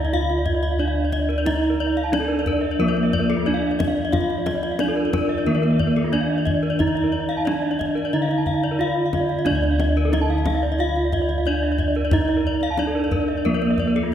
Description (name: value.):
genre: Balinese gamelan.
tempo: 90 BPM.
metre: 4/4.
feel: straight.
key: D pelog.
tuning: A4 = 439 Hz.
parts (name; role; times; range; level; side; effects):
gamelan-type bronze metallophone; melody; 0.0-14.1 s; Bb3 to F4; -23 LUFS; right 1 dB; tape echo.
gamelan-type bronze metallophone; arpeggios; 0.0-14.0 s; A4 to F5; -26 LUFS; left 3 dB; none.
gamelan-type bronze metallophone; arpeggios; 0.0-14.1 s; F4 to A5; -29 LUFS; right 4 dB; none.
gamelan-type bossed gongs; bass; 0.0-14.1 s; D2 to F4; -24 LUFS; equal; none.
kendang; percussion; 0.1-14.1 s; none; -28 LUFS; left 1 dB; none.
room: wet concert hall reverb, RT60 2.1 s.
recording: heard from further back in the room.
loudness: -19 LUFS.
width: side -10 dB against mid.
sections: 0.0-14.1 A section.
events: none.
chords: none.